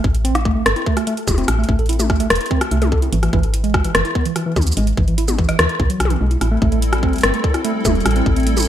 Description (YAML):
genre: IDM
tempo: 146 BPM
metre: 4/4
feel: straight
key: unclear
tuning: A4 = 442 Hz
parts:
  - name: woody FM bass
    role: bass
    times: 0.0-8.7 s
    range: E1 to D#2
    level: -18 LUFS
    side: equal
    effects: none
  - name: electronic kick drum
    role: drums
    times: 0.0-8.3 s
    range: none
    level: -19 LUFS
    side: equal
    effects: overdrive, studio reverb
  - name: electro analog drum machine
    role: drums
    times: 0.1-8.7 s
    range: hi-hat, rim click, shaker, toms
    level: -20 LUFS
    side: left 1 dB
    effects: studio reverb, gated reverb, ping-pong delay
  - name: mellow tine electric piano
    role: arpeggios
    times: 0.2-8.6 s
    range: E3 to A4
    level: -22 LUFS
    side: right 2 dB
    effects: medium stereo tremolo, ping-pong delay
  - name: hollow soft pad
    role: sustained chords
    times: 6.4-8.7 s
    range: G3 to A4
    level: -22 LUFS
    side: left 1 dB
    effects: ensemble chorus, sidechain pumping
room: light reverb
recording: bright 1980s-style digital production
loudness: -15 LUFS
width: side -11 dB against mid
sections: 0.0-8.7 A section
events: none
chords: 0.0 Am; 3.1 E; 6.4 Am7